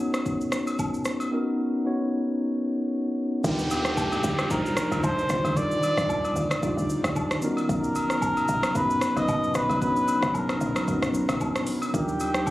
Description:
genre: amapiano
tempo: 113 BPM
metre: 4/4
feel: swing 55% on 16ths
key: unclear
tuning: A4 = 440 Hz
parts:
  - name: mellow tine electric piano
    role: accompaniment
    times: 0.0-12.5 s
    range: G3 to C#5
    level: -27 LUFS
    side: equal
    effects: medium stereo tremolo
  - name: afro-pop drum kit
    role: drums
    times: 0.1-12.5 s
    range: hi-hat, kick drum, rim click, shaker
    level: -30 LUFS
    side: equal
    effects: none
  - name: agogo bells and woodblock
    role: percussion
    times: 0.1-12.5 s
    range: none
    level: -35 LUFS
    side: equal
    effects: none
  - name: trumpet with cup mute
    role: melody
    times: 3.4-12.5 s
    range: G4 to D#5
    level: -28 LUFS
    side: equal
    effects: ping-pong delay
  - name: ethereal airy pad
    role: sustained chords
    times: 4.1-12.5 s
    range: C#3 to D5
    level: -35 LUFS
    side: equal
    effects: ensemble chorus, built-in reverb, tremolo, sidechain pumping
  - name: tight log drum bass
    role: bass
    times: 3.4-12.5 s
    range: F#1 to Eb2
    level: -31 LUFS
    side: equal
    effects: none
  - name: downlifter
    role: sound effects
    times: 3.4-7.7 s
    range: none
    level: -34 LUFS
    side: equal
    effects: none
room: light reverb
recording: recorded on a phone in the room, club reverb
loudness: -23 LUFS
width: side -16 dB against mid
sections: 0.0-3.4 A section; 3.4-12.5 B section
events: drop 3.4-12.5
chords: 0.0 Bmaj9; 3.4 Ebmaj9; 7.4 Bmaj9; 11.9 Ebmaj9

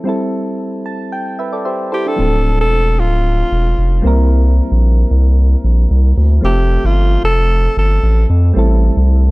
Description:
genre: afrobeats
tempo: 113 BPM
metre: 4/4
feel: straight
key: unclear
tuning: A4 = 440 Hz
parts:
  - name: soft electric-piano-like synth keys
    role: accompaniment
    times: 0.0-9.3 s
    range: F3 to A5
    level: -20 LUFS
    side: equal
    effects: chorus
  - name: breathy alto saxophone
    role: melody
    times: 1.9-8.3 s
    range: F4 to A4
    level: -18 LUFS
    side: equal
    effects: analog delay
  - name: saturated sub bass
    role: bass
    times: 2.2-9.3 s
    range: D1 to F2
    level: -11 LUFS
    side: equal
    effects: none
room: studio reverb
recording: dry, gritty hardware recording, transformer saturation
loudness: -11 LUFS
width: side -22 dB against mid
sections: 0.0-2.2 A section; 2.2-9.3 B section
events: synth keys fill 0.6-2.2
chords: 0.1 Am7; 2.2 Dm7; 4.0 C7; 6.4 Fmaj7; 8.6 Am7

